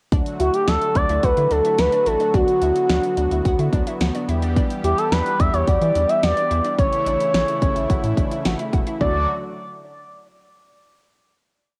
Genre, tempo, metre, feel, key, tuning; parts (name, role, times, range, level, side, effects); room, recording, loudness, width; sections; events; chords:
synth-pop; 108 BPM; 4/4; straight; D major; A4 = 439 Hz
brassy analog pad; sustained chords; 0.1-9.3 s; C#3 to G4; -30 LUFS; equal; chorus, cassette tape
analog pluck; arpeggios; 0.1-9.3 s; C#4 to F#4; -33 LUFS; equal; chorus, cassette tape, tape echo
round analog bass; bass; 0.1-9.3 s; E1 to E3; -26 LUFS; equal
pop drum kit; drums; 0.1-9.1 s; hi-hat, kick drum, snare drum, toms; -24 LUFS; equal; cassette tape
expressive portamento lead; melody; 0.4-9.3 s; F#4 to E5; -22 LUFS; equal; chorus, cassette tape
moderate spring reverb, RT60 2.6 s; home recording on cassette; -20 LUFS; mono
0.1-9.0 verse; 9.0-11.2 final chord
0.1 D; 4.3 Em; 6.8 A; 9.0 D